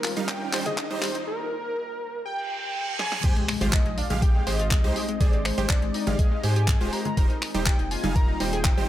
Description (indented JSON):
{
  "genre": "progressive house",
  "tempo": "122 BPM",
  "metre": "4/4",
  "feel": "straight",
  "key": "unclear",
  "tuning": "A4 = 444 Hz",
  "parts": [
    { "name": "wide unison lead", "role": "melody", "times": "0.0-8.9 s", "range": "Bb4 to Bb5", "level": "-32 LUFS", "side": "equal", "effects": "dub echo" },
    { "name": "evolving wavetable pad", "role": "sustained chords", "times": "0.0-8.9 s", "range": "Eb2 to C5", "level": "-36 LUFS", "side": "equal", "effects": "chorus, built-in reverb, sidechain pumping" },
    { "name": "analog pluck", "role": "arpeggios", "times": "0.0-8.8 s", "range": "Ab3 to Bb4", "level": "-33 LUFS", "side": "left 3 dB", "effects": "chorus, sidechain pumping, tape echo" },
    { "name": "deep house drum kit", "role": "drums", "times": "0.0-8.8 s", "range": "crash cymbal, finger snaps, handclaps, hi-hat, snare drum", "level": "-30 LUFS", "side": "left 1 dB", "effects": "overdrive" },
    { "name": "riser, reverse cymbal and impact", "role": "sound effects", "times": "0.0-5.2 s", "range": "none", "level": "-34 LUFS", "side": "right 2 dB", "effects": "none" },
    { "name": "supersaw stab", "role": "stabs", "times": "0.2-8.9 s", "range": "G3 to F5", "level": "-32 LUFS", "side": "right 4 dB", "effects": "sidechain pumping, tape echo" },
    { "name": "congas", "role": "percussion", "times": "0.2-8.9 s", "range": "none", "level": "-34 LUFS", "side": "right 2 dB", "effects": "sidechain pumping on perc" },
    { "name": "electronic kick drum", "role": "drums", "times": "0.3-8.8 s", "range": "none", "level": "-22 LUFS", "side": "equal", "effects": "high-pass filter on kick" },
    { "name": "saturated sub bass", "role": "bass", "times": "3.2-8.9 s", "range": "Eb1 to Ab2", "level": "-28 LUFS", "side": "equal", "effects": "sidechain pumping" }
  ],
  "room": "little or no reverb",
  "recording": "high-pass filter",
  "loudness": "-22 LUFS",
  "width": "side -13 dB against mid",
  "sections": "0.0-3.2 A section; 3.2-8.9 B section",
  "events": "build-up 0.0-3.2; drum fill 0.0-1.3, 3.0; riser 0.0-1.3; filter sweep on synth pluck 0.0-3.2; break 1.3-3.2; reverse cymbal 2.4-3.2; drop 3.2-8.9; impact 3.2-5.2",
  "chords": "0.0 Eb6; 3.2 Abmaj7; 7.2 Eb6"
}